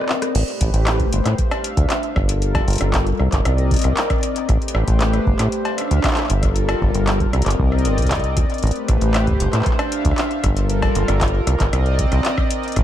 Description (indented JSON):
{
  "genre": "IDM",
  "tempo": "116 BPM",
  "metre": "4/4",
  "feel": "straight",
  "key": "unclear",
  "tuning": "A4 = 440 Hz",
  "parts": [
    { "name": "warm analog pad", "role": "sustained chords", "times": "0.0-12.8 s", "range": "G3 to F5", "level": "-23 LUFS", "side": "left 1 dB", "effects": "chorus" },
    { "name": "electro analog drum machine", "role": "drums", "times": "0.0-12.8 s", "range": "cowbell, crash cymbal, handclaps, hi-hat, rim click", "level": "-24 LUFS", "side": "left 1 dB", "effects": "ping-pong delay" },
    { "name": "deep acid bass", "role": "bass", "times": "0.3-12.8 s", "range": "G1 to A2", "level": "-18 LUFS", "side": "equal", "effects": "none" },
    { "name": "electronic kick drum", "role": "drums", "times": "0.6-12.8 s", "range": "none", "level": "-22 LUFS", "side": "equal", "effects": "none" }
  ],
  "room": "light reverb",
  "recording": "none",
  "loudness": "-16 LUFS",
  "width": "side -11 dB against mid",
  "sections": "0.3-12.8 A section",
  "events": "break 0.0-0.3; drum fill 0.0-0.3",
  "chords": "0.3 Am9; 1.4 Dm9; 2.2 Gm9; 3.2 Cm9; 4.5 Am9; 5.5 Dm9; 6.3 Gm9; 7.3 Cm9; 8.6 Am9; 9.7 Dm9; 10.4 Gm9; 11.5 Cm9"
}